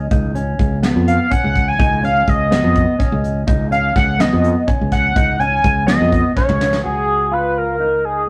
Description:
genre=progressive instrumental, band music in an uneven meter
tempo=250 BPM (eighths)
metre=7/8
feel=straight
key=Db mixolydian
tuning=A4 = 441 Hz
part: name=lead with added fifth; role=melody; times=0.0-8.3 s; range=Ab4 to Ab5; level=-20 LUFS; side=equal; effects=chorus
part: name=mellow electric guitar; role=arpeggios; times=0.0-8.2 s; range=Cb4 to Gb4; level=-24 LUFS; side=equal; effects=none
part: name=fretless electric bass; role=bass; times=0.0-8.3 s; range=Db2 to F2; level=-22 LUFS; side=equal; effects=none
part: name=soft brush drum kit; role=drums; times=0.1-6.8 s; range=hi-hat, kick drum, snare drum, toms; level=-22 LUFS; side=equal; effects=none
room=moderate stone room reverb, RT60 1.0 s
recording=rough rehearsal-room recording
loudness=-16 LUFS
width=mono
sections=0.0-6.8 A section; 6.8-8.3 B section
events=analog synth lead solo 0.0-6.8; drum fill 6.4-6.8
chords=0.0 Db7sus2; 6.8 Dbsus24

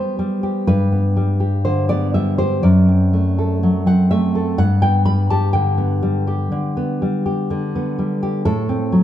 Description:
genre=romantic piece for solo classical guitar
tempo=61 BPM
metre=4/4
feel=rubato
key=unclear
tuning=A4 = 440 Hz
part: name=nylon-string guitar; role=solo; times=0.0-9.0 s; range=F#2 to B5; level=-15 LUFS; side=equal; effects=none
room=wet recital hall reverb, RT60 1.7 s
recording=none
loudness=-15 LUFS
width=side -11 dB against mid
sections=0.0-9.0 A section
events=none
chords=0.0 Em (rootless); 0.7 G; 2.6 D7/F#; 4.6 G; 8.5 F#dim/A

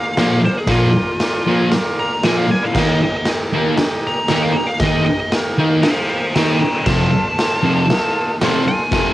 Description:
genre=garage rock duo or trio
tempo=117 BPM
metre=4/4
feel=straight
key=unclear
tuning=A4 = 444 Hz
part: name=fuzz lead guitar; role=melody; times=0.0-9.1 s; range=F4 to Bb5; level=-21 LUFS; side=equal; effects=distortion, cassette tape
part: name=combo organ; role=sustained chords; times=0.0-9.1 s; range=F4 to F5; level=-26 LUFS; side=right 1 dB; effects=spring reverb, cassette tape
part: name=thick fuzz guitar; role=riff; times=0.2-9.1 s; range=F2 to Eb4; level=-16 LUFS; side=equal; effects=distortion, cassette tape
part: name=raw garage drum kit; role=drums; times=0.2-9.0 s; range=crash cymbal, hi-hat, kick drum, snare drum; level=-20 LUFS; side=equal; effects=none
room=light reverb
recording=home recording on cassette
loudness=-14 LUFS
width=side -15 dB against mid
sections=0.0-9.1 A section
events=lead electric guitar solo 0.0-9.1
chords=0.0 Bb; 2.8 Eb; 6.9 F

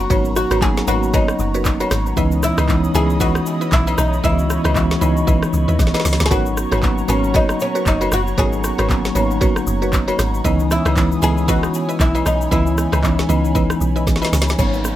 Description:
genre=amapiano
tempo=116 BPM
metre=4/4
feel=swing 58% on 16ths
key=unclear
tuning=A4 = 440 Hz
part: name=oud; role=melody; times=0.0-15.0 s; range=C#4 to G#4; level=-23 LUFS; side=left 1 dB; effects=digital delay
part: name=mellow tine electric piano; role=accompaniment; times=0.0-15.0 s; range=D#3 to D#5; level=-21 LUFS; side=equal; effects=medium stereo tremolo
part: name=airy breathy pad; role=sustained chords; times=0.0-15.0 s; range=C#5 to D#6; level=-28 LUFS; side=equal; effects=chorus, sidechain pumping
part: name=deep log drum bass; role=bass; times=0.0-14.9 s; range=F#1 to D#2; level=-20 LUFS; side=equal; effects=none
part: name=afro-pop drum kit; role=drums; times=0.0-15.0 s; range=handclaps, hi-hat, kick drum, rim click, shaker, snare drum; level=-20 LUFS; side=equal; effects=none
part: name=mallet-like synth pluck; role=stabs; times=0.1-14.3 s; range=E4 to D#5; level=-25 LUFS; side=right 2 dB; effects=chorus, digital delay
part: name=agogo bells and woodblock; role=percussion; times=0.1-14.7 s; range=none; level=-29 LUFS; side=left 4 dB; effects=none
part: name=downlifter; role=sound effects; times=14.6-15.0 s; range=none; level=-28 LUFS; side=right 1 dB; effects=none
room=light reverb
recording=none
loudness=-15 LUFS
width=side -13 dB against mid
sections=0.0-14.6 A section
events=drop 0.0-14.6; drum fill 5.8-6.3, 14.1-14.6; tine electric piano fill 9.7-10.4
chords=0.0 G#m11; 2.2 C#m9; 6.3 G#m11; 10.4 C#m9

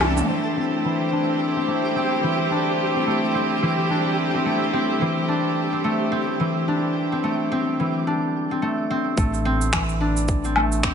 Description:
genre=organic downtempo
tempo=108 BPM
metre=4/4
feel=swing 58% on 16ths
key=A minor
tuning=A4 = 440 Hz
part: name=bright chamber string section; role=sustained chords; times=0.0-8.0 s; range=A3 to C5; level=-25 LUFS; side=right 1 dB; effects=vintage 12-bit sampler grit, sidechain pumping
part: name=concert harp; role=arpeggios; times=0.0-10.9 s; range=E3 to D4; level=-22 LUFS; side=left 1 dB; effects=low-pass filter, digital delay
part: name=round analog bass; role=bass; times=0.0-0.2, 9.2-10.9 s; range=A1 to C2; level=-24 LUFS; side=equal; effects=sidechain pumping
part: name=deep house drum kit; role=drums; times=0.0-0.3, 9.2-10.9 s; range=cabasa, finger snaps, toms, woodblock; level=-24 LUFS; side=left 1 dB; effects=none
part: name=twinkling granular texture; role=texture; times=0.0-8.1 s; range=G3 to A4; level=-30 LUFS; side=right 2 dB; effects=built-in reverb
part: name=electronic kick drum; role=drums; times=9.2-10.9 s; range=none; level=-24 LUFS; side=equal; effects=none
room=moderate lush hall reverb, RT60 2.2 s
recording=nothing above 10.7 kHz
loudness=-20 LUFS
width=side -7 dB against mid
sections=0.3-9.2 A section; 9.2-10.9 B section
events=drum fill 0.0; filter sweep on harp 0.3-9.2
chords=0.3 Am7; 9.2 Am

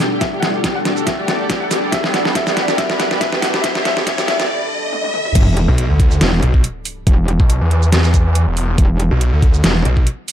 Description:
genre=heavy wobble dubstep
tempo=140 BPM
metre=4/4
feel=swing 54% on 16ths, half-time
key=E minor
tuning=A4 = 440 Hz
part: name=warm studio violin section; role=melody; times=0.0-4.5 s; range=G4 to F#5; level=-22 LUFS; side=left 1 dB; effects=ping-pong delay
part: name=evolving wavetable pad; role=sustained chords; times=0.0-5.3 s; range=B2 to A4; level=-27 LUFS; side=equal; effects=chorus, built-in reverb, sidechain pumping
part: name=dubstep drum kit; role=drums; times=0.0-10.3 s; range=crash cymbal, hi-hat, shaker, snare drum, toms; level=-19 LUFS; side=equal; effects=none
part: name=riser and sub drop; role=sound effects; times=0.1-7.1 s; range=none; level=-24 LUFS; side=equal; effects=none
part: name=granular cloud pad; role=texture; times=0.0-4.5 s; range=A4 to B5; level=-25 LUFS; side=equal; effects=built-in reverb, sidechain pumping
part: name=electronic kick drum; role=drums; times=0.2-10.0 s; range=none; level=-14 LUFS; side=equal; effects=none
part: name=metallic wobble bass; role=bass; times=5.4-9.8 s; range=E1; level=-15 LUFS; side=equal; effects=distortion, chorus, overdrive
part: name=snarling distorted saw bass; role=bass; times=5.7-10.1 s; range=E1 to E2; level=-14 LUFS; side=equal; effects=distortion, overdrive
room=light reverb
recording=dark, warm production, high-pass filter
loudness=-13 LUFS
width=side -10 dB against mid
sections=0.0-5.4 A section; 5.4-10.3 B section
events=build-up 0.0-5.4; drum fill 0.0-4.5, 4.9-5.4; filter sweep on ambient pad 0.0-5.4; riser 0.1-5.4; break 4.5-5.4; drop 5.4-10.3; impact 5.4-7.1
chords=0.0 G; 5.4 E5

